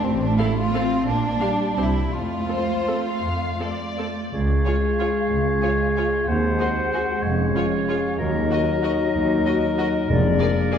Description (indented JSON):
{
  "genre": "classical, orchestral ballroom waltz",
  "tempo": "153-205 BPM",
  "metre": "3/4",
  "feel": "rubato",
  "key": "F major, Db major from 4.3 s",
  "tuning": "A4 = 440 Hz",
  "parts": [
    { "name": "rich chamber violin section", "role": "second line", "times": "0.0-10.8 s", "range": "C4 to Bb4", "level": "-29 LUFS", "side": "equal", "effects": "none" },
    { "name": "clear symphonic double bass section", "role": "bass", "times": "0.0-10.4 s", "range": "F1 to F2", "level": "-26 LUFS", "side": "right 2 dB", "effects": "none" },
    { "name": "rich symphonic cello section", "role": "bass", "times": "0.0-10.4 s", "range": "Db2 to C4", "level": "-27 LUFS", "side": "right 1 dB", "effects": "none" },
    { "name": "rich symphonic violin section", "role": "melody", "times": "0.4-10.8 s", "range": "C5 to F5", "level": "-33 LUFS", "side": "left 4 dB", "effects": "none" },
    { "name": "clear symphonic viola section", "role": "accompaniment", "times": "0.4-10.8 s", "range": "C4 to A4", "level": "-32 LUFS", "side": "left 1 dB", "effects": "none" },
    { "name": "silver concert flute", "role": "second line", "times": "4.3-10.8 s", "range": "D5 to Gb5", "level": "-29 LUFS", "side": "left 5 dB", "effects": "none" },
    { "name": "warm oboe", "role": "second line", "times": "4.3-10.8 s", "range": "Bb4 to Db5", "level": "-28 LUFS", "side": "equal", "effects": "none" },
    { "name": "dark bassoon", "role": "accompaniment", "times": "4.3-10.8 s", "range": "Gb3 to Ab3", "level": "-26 LUFS", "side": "equal", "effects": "none" },
    { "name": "mellow French horn section", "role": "sustained chords", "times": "4.3-10.8 s", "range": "Gb3 to F4", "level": "-26 LUFS", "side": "left 3 dB", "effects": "none" },
    { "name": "timpani", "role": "percussion", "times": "10.1-10.5 s", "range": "F2", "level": "-22 LUFS", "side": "left 2 dB", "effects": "none" }
  ],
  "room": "wet scoring stage reverb, RT60 1.9 s",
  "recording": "heard from further back in the room",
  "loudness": "-19 LUFS",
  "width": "side -8 dB against mid",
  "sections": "0.0-4.3 A section; 4.3-10.8 B section",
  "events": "none",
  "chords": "0.0 F/A; 1.1 Gm/Bb; 1.8 C; 2.1 F; 4.3 Db; 6.3 Ab7/Eb; 7.2 Db/F; 8.2 Ebm; 10.1 Bb7/F"
}